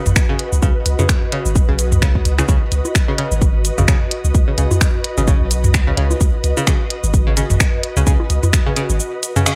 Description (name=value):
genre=minimal techno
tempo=129 BPM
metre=4/4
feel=swing 57% on 16ths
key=unclear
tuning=A4 = 440 Hz
part: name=ethereal airy pad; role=texture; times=0.0-9.6 s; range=F#4 to D#5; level=-28 LUFS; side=equal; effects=ensemble chorus, built-in reverb, sidechain pumping
part: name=punchy sub bass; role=bass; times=0.1-9.0 s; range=G#1 to C#2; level=-20 LUFS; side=equal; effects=sidechain pumping
part: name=minimal click drum kit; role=drums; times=0.1-9.6 s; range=finger snaps, hi-hat, shaker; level=-24 LUFS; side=equal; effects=none
part: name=electronic toms and bongos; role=percussion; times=0.1-9.4 s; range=none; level=-21 LUFS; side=equal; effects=overdrive, digital delay
part: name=electronic kick drum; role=drums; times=0.2-8.6 s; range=none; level=-18 LUFS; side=equal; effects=none
part: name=string-like resonator pluck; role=riff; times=0.3-9.5 s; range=C#3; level=-26 LUFS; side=equal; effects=chorus, sidechain pumping, digital delay
room=little or no reverb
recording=none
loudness=-16 LUFS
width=mono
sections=0.0-9.6 A section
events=none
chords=0.0 C#5